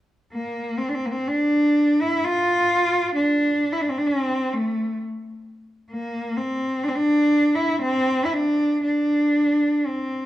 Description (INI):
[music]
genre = celtic folk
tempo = 58-66 BPM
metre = 3/4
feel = rubato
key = unclear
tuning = A4 = 441 Hz
[part]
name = rich cello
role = solo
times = 0.3-10.3 s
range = A3 to F4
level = -20 LUFS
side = equal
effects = none
[sound]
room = moderate recital hall reverb, RT60 1.6 s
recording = dark, warm production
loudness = -19 LUFS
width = side -14 dB against mid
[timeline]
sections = 0.0-10.3 A section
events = none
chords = none